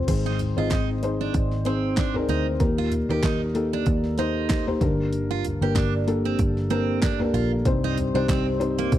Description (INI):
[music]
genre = piano-driven pop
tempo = 95 BPM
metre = 4/4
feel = swing 56% on 16ths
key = unclear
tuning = A4 = 441 Hz
[part]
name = felt-muted upright piano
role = accompaniment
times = 0.0-9.0 s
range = G2 to Eb5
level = -25 LUFS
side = left 2 dB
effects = none
[part]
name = vintage muted picked electric bass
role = bass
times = 0.0-9.0 s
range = G1 to Eb2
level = -27 LUFS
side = right 1 dB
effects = none
[part]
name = pop drum kit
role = drums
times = 0.1-9.0 s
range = crash cymbal, handclaps, hi-hat, kick drum, snare drum, toms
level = -26 LUFS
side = right 1 dB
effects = none
[part]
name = picked steel-string acoustic guitar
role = riff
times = 0.3-8.9 s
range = Bb3 to G4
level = -30 LUFS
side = right 13 dB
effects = none
[sound]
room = little or no reverb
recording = dry, close 1970s-style studio recording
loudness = -21 LUFS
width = side -12 dB against mid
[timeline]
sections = 0.1-9.0 A section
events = none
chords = 0.1 Ab; 2.6 Eb; 4.8 Gm; 7.7 Cm